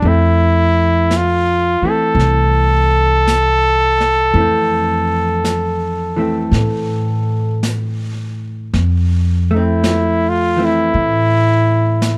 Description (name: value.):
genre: jazz ballad.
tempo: 55 BPM.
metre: 4/4.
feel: swing 68% on 8ths.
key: F major.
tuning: A4 = 440 Hz.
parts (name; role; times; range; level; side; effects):
mellow trumpet; melody; 0.0-12.2 s; E4 to A4; -18 LUFS; equal; none.
hollow-body jazz guitar; accompaniment; 0.0-12.2 s; E3 to C4; -24 LUFS; equal; none.
upright bass; bass; 0.0-12.2 s; C2 to A2; -19 LUFS; equal; none.
jazz brush drum kit; drums; 0.0-12.2 s; brushed snare drum, hi-hat, snare drum; -28 LUFS; equal; none.
room: little or no reverb.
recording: close, detailed microphones.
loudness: -15 LUFS.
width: mono.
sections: 0.0-8.7 A section; 8.7-12.2 B section.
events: trumpet solo 8.7-12.2.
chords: 0.0 Fmaj7.